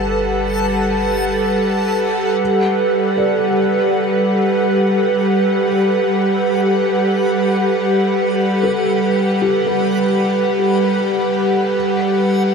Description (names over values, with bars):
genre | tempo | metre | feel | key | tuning
ambient | free time | none | none | G major | A4 = 440 Hz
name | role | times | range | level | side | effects
airy breathy pad | sustained chords | 0.0-12.5 s | G3 to F#5 | -14 LUFS | right 1 dB | chorus
felt-muted upright piano | arpeggios | 0.0-12.5 s | G4 to D5 | -27 LUFS | left 3 dB | tape echo
round analog bass | bass | 0.0-2.4 s | G1 | -29 LUFS | left 1 dB | none
backwards swelling texture | texture | 0.0-12.5 s | F#5 to B5 | -30 LUFS | left 2 dB | built-in reverb
room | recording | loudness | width
wet cathedral reverb, RT60 6.8 s | in a vast, echoing space | -14 LUFS | side -5 dB against mid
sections
0.0-2.4 A section; 2.4-12.5 B section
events
fade-in on synth texture 2.4-12.5; fade-out on felt piano 2.4-12.5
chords
0.0 Gmaj9